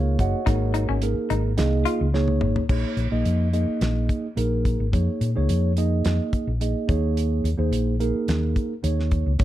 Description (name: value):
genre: electric jazz fusion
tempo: 108 BPM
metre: 4/4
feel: straight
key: Bb minor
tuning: A4 = 440 Hz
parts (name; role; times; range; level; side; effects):
- mellow tine electric piano; accompaniment; 0.0-9.4 s; Bb3 to Gb5; -25 LUFS; right 3 dB; lush chorus
- hollow-body short-scale fingered electric bass; bass; 0.0-9.4 s; Gb1 to Bb2; -23 LUFS; equal; none
- damped 70s drum kit; drums; 0.2-9.4 s; crash cymbal, hi-hat, kick drum, snare drum, toms; -26 LUFS; equal; none
- semi-hollow electric guitar; stabs; 0.5-2.0 s; Db4 to F4; -28 LUFS; left 9 dB; lush chorus
room: light reverb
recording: dark, warm production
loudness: -20 LUFS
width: side -13 dB against mid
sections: 0.0-2.7 A section; 2.7-9.4 B section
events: drum fill 2.1-2.7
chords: 0.0 Ab13sus4; 2.7 Bbm7; 6.9 Eb7(no3)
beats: | 0.47 1.03 1.59 2.14 | 2.70 3.26 3.82 4.37 | 4.93 5.49 6.05 6.61 | 7.16 7.72 8.28 8.84 | 9.39